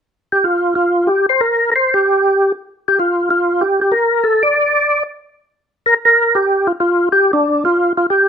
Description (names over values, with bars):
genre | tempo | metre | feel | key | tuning
jazz | 190 BPM | 4/4 | swing 62% on 8ths | G minor | A4 = 440 Hz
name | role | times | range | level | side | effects
percussive tonewheel organ | solo | 0.3-8.3 s | D4 to D5 | -12 LUFS | equal | slow rotary speaker, overdrive, chorus vibrato
room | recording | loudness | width
light reverb | close, detailed microphones | -12 LUFS | side -7 dB against mid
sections
0.5-5.5 A section; 5.5-8.3 B section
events
none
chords
none